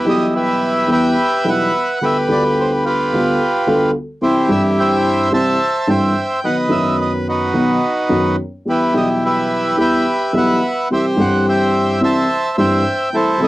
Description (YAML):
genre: tango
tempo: 108 BPM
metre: 4/4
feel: rubato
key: E harmonic minor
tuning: A4 = 440 Hz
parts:
  - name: bandoneon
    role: melody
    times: 0.0-13.5 s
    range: D#4 to A5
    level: -16 LUFS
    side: right 1 dB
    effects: cassette tape
  - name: dark upright piano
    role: accompaniment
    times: 0.0-13.5 s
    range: F#1 to A4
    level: -17 LUFS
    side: equal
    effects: cassette tape
room: moderate booth ambience, RT60 0.2 s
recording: home recording on cassette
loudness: -14 LUFS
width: side -17 dB against mid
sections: 0.0-13.5 A section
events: none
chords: 0.0 Em; 2.0 G7/D; 4.2 C; 6.4 B; 8.7 Em; 10.9 C